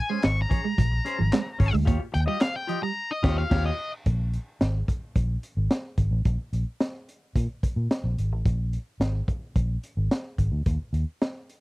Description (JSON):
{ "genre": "funk", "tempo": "109 BPM", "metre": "4/4", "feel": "straight", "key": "unclear", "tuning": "A4 = 439 Hz", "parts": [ { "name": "octave-fuzz lead guitar", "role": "melody", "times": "0.0-3.9 s", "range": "Eb5 to Db6", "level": "-30 LUFS", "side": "left 2 dB", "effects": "distortion" }, { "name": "clean electric guitar", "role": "accompaniment", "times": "0.1-3.7 s", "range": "Db4 to Eb5", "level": "-33 LUFS", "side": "left 4 dB", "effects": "none" }, { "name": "mellow electric guitar", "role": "riff", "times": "0.1-2.9 s", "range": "F3 to Bb3", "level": "-30 LUFS", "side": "right 8 dB", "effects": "none" }, { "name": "vintage muted fingered electric bass", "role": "bass", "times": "0.2-11.0 s", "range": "Ab1 to Bb2", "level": "-25 LUFS", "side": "equal", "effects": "none" }, { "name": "crunchy breakbeat drum kit", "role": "drums", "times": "0.2-11.6 s", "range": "crash cymbal, handclaps, hi-hat, kick drum, snare drum", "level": "-25 LUFS", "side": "equal", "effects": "none" } ], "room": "little or no reverb", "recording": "dry, close 1970s-style studio recording", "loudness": "-24 LUFS", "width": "side -20 dB against mid", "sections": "0.0-4.1 A section; 4.1-11.6 B section", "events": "lead electric guitar solo 0.0-4.1; band accent 3.0-4.1", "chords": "0.0 Bbm9; 1.9 Eb9; 4.1 Absus2; 10.7 N.C.", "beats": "0.24 0.79 1.33 | 1.88 2.42 2.97 3.51 | 4.06 4.61 5.16 5.71 | 6.26 6.81 7.36 7.91 | 8.46 9.01 9.56 10.11 | 10.66 11.21" }